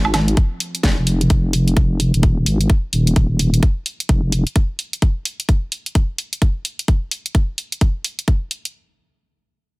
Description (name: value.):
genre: bass house.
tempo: 129 BPM.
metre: 4/4.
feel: swing 62% on 16ths.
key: F minor.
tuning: A4 = 440 Hz.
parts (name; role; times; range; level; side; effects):
sweeping resonant pad; sustained chords; 0.0-5.0 s; none; barely audible; none; none.
vowel-sweep wobble bass; bass; 0.0-4.4 s; Eb1 to Ab1; -16 LUFS; equal; chorus, tube saturation, sidechain pumping.
garage drum kit; drums; 0.0-8.7 s; hi-hat, snare drum, woodblock; -22 LUFS; right 1 dB; none.
electronic kick drum; drums; 0.4-8.4 s; none; -15 LUFS; equal; none.
room: digital ambience.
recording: none.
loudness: -16 LUFS.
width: side -24 dB against mid.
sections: 0.0-8.7 A section.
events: none.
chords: 0.0 F5.